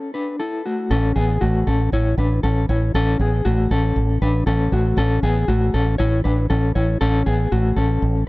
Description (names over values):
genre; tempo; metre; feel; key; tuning
jangly indie pop; 118 BPM; 4/4; straight; A major; A4 = 440 Hz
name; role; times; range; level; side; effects
mellow electric guitar; arpeggios; 0.0-8.2 s; A3 to C#5; -21 LUFS; left 2 dB; tremolo, analog delay
mellow fretless electric bass; bass; 0.9-8.2 s; A1; -18 LUFS; right 1 dB; none
room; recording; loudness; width
little or no reverb; rough home demo mix; -17 LUFS; side -21 dB against mid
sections
0.9-8.3 A section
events
break 0.0-0.9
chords
0.0 Esus4; 0.9 Aadd9